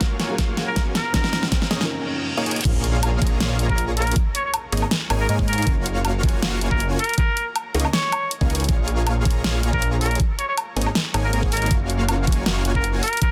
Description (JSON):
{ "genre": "future bass", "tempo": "159 BPM", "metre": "4/4", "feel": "swing 53% on 16ths, half-time", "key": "Db major", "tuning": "A4 = 440 Hz", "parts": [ { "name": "felt-muted upright piano", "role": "accompaniment", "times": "0.0-2.7 s", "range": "Db3 to F5", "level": "-35 LUFS", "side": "equal", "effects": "sidechain pumping, tape echo" }, { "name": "shimmering ambient pad", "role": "sustained chords", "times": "0.3-1.9 s", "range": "Bb3 to F5", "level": "-43 LUFS", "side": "equal", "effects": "none" }, { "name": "dense compressed supersaw", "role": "riff", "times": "0.0-13.0 s", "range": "Bb3 to Bb5", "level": "-30 LUFS", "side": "equal", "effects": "sidechain pumping" }, { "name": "big-room dance drum kit", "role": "drums", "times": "0.0-13.3 s", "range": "crash cymbal, hi-hat, snare drum, woodblock", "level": "-27 LUFS", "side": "equal", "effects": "none" }, { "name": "electronic kick drum", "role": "drums", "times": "0.0-13.3 s", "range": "none", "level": "-24 LUFS", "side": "equal", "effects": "overdrive" }, { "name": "riser, reverse cymbal and impact", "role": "sound effects", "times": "0.1-4.2 s", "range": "none", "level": "-34 LUFS", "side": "equal", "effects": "none" }, { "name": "trumpet with straight mute", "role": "melody", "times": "0.7-1.4, 3.7-13.3 s", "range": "Bb4 to Db5", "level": "-30 LUFS", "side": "equal", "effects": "sidechain pumping, tape echo" }, { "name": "detuned saw bass", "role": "bass", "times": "2.7-13.0 s", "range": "Gb1 to Ab2", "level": "-25 LUFS", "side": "equal", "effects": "chorus, sidechain pumping" } ], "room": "little or no reverb", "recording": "dense, heavily limited modern master", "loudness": "-21 LUFS", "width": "mono", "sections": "0.0-2.6 A section; 2.6-13.3 B section", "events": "build-up 0.0-2.6; drum fill 0.0-1.9, 2.5; reverse cymbal 1.9-2.6; drop 2.6-13.3; impact 2.6-4.2", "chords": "0.0 Gbmaj7; 1.0 Db69; 2.6 Bbm7; 4.2 Db69; 5.7 Gbmaj7; 7.0 Db69; 8.7 Bbm7; 10.2 Db69; 11.7 Gbmaj7" }